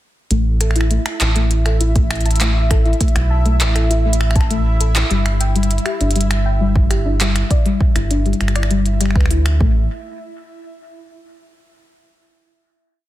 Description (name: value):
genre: IDM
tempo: 100 BPM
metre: 4/4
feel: straight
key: unclear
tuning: A4 = 441 Hz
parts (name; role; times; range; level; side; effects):
- soft round pluck; arpeggios; 0.3-9.9 s; G3 to A5; -23 LUFS; left 5 dB; wide subtle chorus, cassette tape, digital delay
- round analog bass; bass; 0.3-9.9 s; G1 to D2; -16 LUFS; equal; none
- glitchy drum kit; drums; 0.3-9.6 s; finger snaps, handclaps, hi-hat; -23 LUFS; equal; studio reverb, soft clipping on snare
- bubbling stepped-filter texture; texture; 0.7-9.9 s; E4 to E5; -27 LUFS; right 2 dB; chorus, built-in reverb, sidechain pumping
- electronic kick drum; drums; 2.0-9.7 s; none; -16 LUFS; equal; studio reverb
room: digital ambience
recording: dense, heavily limited modern master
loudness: -14 LUFS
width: side -15 dB against mid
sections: 0.3-9.9 groove; 9.9-12.3 final hit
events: none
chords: 0.3 A5; 5.1 G5; 7.5 Em7/G; 9.6 A5; 9.9 N.C.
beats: | 0.31 0.91 1.51 2.11 | 2.71 3.31 3.91 4.51 | 5.11 5.71 6.31 6.91 | 7.51 8.11 8.71 9.31 | 9.91